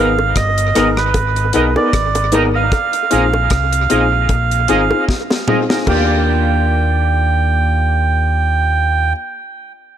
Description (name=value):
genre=lovers rock reggae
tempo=76 BPM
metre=4/4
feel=swing 56% on 16ths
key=Eb major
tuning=A4 = 441 Hz
part: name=melodica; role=melody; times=0.0-9.1 s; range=Bb4 to G5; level=-18 LUFS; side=right 6 dB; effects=tape echo
part: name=warm grand piano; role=accompaniment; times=0.0-9.1 s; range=Bb3 to Bb4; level=-20 LUFS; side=left 4 dB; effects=none
part: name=twangy electric guitar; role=stabs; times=0.0-9.4 s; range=Bb3 to Eb5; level=-23 LUFS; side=right 3 dB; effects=analog chorus, dub echo
part: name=fingered electric bass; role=bass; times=0.0-9.1 s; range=G1 to Eb2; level=-17 LUFS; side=left 1 dB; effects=none
part: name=bongos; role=percussion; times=0.2-6.2 s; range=none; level=-25 LUFS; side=right 2 dB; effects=dub echo
part: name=deep reggae drum kit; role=drums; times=0.4-6.1 s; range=crash cymbal, hi-hat, kick drum, rim click, snare drum, toms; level=-20 LUFS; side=left 1 dB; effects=dub echo
room=light reverb, small room ambience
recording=none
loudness=-12 LUFS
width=side -10 dB against mid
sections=0.0-5.9 A section; 5.9-9.0 B section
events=drum fill 5.1-5.9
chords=0.0 Abmadd9; 2.7 Bb7sus4; 5.9 Ebmaj9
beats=0.35 1.14 1.93 | 2.72 3.50 4.29 5.08 | 5.87 6.66 7.45 8.24